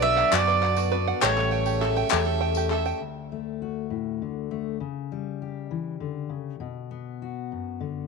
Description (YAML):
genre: indie folk with a building arrangement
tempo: 67 BPM (dotted quarters)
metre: 6/8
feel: straight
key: D major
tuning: A4 = 440 Hz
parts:
  - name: mandolin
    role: melody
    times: 0.0-2.7 s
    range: C#5 to E5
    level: -26 LUFS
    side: right 3 dB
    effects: none
  - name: warm fiddle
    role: second line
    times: 0.0-3.0 s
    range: C#5 to E5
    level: -30 LUFS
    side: right 15 dB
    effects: none
  - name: picked steel-string acoustic guitar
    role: accompaniment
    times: 0.0-3.0 s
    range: A2 to A4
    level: -30 LUFS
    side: left 14 dB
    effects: none
  - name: dark brass ensemble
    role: sustained chords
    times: 0.0-3.0 s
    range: C#3 to B3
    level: -38 LUFS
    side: left 13 dB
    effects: none
  - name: open-back banjo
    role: arpeggios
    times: 0.0-3.0 s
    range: F#4 to G5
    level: -29 LUFS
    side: right 13 dB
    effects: none
  - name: hollow-body short-scale fingered electric bass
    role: bass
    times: 0.0-2.9 s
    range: A1 to F#2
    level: -28 LUFS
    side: right 1 dB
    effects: none
  - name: tambourine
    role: percussion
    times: 0.0-2.9 s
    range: none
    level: -41 LUFS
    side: left 17 dB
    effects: none
  - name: group handclap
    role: percussion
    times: 0.2-2.8 s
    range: none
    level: -28 LUFS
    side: left 13 dB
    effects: none
  - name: fingerpicked steel-string acoustic guitar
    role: accompaniment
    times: 3.0-8.1 s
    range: D2 to G4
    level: -31 LUFS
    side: left 10 dB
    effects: none
room: light reverb, studio reverb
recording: 1960s-style stereo with parts hard left and right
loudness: -24 LUFS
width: side -4 dB against mid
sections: 0.0-3.0 A section; 3.0-8.1 B section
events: none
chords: 0.0 Bm; 1.2 A7; 3.0 D; 4.8 C#dim; 6.6 Bm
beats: 0.32 | 1.21 2.11 | 3.01 3.90 | 4.80 5.71 | 6.61 7.51